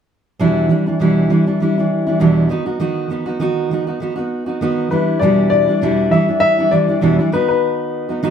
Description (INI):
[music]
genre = pop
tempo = 99 BPM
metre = 4/4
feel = swing 55% on 16ths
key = E minor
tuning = A4 = 437 Hz
[part]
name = fingerpicked steel-string acoustic guitar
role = accompaniment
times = 0.4-8.3 s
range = E2 to F#4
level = -15 LUFS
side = right 1 dB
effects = none
[part]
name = warm upright piano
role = melody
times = 4.9-8.3 s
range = B4 to E5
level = -16 LUFS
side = left 4 dB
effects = none
[sound]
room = wet studio reverb, RT60 0.7 s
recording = band playing live in one room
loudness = -14 LUFS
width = side -8 dB against mid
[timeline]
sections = 0.4-5.2 A section; 5.2-8.3 B section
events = none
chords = 0.4 Em7; 2.5 B/D#; 4.9 Em7; 7.3 B/D#